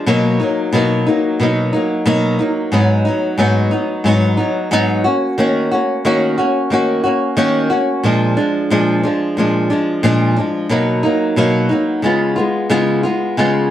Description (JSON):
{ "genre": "indie pop", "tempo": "90 BPM", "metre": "4/4", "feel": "straight", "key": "Eb minor", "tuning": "A4 = 439 Hz", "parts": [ { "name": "flamenco guitar", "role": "solo", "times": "0.0-13.7 s", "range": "Ab2 to Gb4", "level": "-13 LUFS", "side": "equal", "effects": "lush chorus, warbly pitch drift" } ], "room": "moderate small room reverb, RT60 0.6 s", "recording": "dark, warm production", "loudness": "-13 LUFS", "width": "side -12 dB against mid", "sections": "0.0-13.4 A section", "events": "none", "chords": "0.1 Bmaj7; 2.7 Abm7; 5.1 Ebm7; 8.0 Bb7; 10.7 Bmaj7; 12.0 Db7", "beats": "| 0.07 0.73 1.40 2.06 | 2.73 3.39 4.05 4.72 | 5.38 6.05 6.71 7.38 | 8.04 8.71 9.38 10.04 | 10.71 11.38 12.04 12.71 | 13.38" }